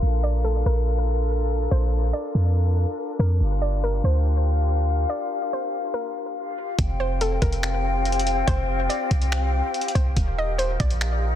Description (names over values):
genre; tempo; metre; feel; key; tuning
hip hop, atmospheric cloud-rap; 142 BPM; 4/4; half-time; unclear; A4 = 441 Hz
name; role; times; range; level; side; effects
mellow small flute group; sustained chords; 0.0-11.4 s; C4 to G5; -27 LUFS; left 3 dB; sidechain pumping
clean 808-style bass; bass; 0.0-11.4 s; Eb1 to F2; -22 LUFS; equal; none
hollow square pluck; melody; 0.2-11.0 s; A4 to Eb5; -31 LUFS; right 1 dB; chorus, ping-pong delay
trip hop sampler-style drum kit; drums; 6.8-11.1 s; finger snaps, hi-hat, kick drum; -25 LUFS; equal; soft clipping on snare
room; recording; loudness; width
little or no reverb; dense, heavily limited modern master, low-pass filter; -21 LUFS; side -11 dB against mid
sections
0.0-6.8 A section; 6.8-11.4 B section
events
filter sweep 0.0-6.8; break 5.1-6.8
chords
0.0 Bbmaj7; 3.4 Gm7; 6.8 Fsus2; 10.2 Ebadd9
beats
| 0.03 0.45 0.87 1.29 | 1.72 2.14 2.56 2.98 | 3.40 3.83 4.25 4.67 | 5.09 5.52 5.94 6.36 | 6.79 7.21 7.63 8.05 | 8.48 8.90 9.32 9.74 | 10.17 10.59 11.01